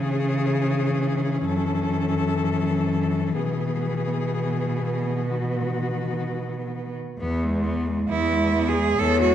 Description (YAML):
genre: classical, lyrical piece for cello ensemble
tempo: 60-69 BPM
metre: 4/4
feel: rubato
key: E major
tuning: A4 = 437 Hz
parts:
  - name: rich cello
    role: melody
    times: 0.0-9.3 s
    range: F#4 to C#5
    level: -30 LUFS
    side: left 7 dB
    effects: none
  - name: rich cello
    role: second line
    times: 0.0-9.3 s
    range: B3 to A4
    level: -27 LUFS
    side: right 4 dB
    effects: none
  - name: bright cello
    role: accompaniment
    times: 0.0-9.3 s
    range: D#3 to B3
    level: -27 LUFS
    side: left 3 dB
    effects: none
  - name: clear cello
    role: bass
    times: 0.0-9.3 s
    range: E2 to C#3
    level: -26 LUFS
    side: right 1 dB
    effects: none
room: wet scoring stage reverb, RT60 1.6 s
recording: dark, warm production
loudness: -22 LUFS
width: side -10 dB against mid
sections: 0.0-7.2 A section; 7.2-9.3 B section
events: none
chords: 0.0 C#m; 1.5 F#m7; 3.4 E/B; 5.3 B; 7.2 E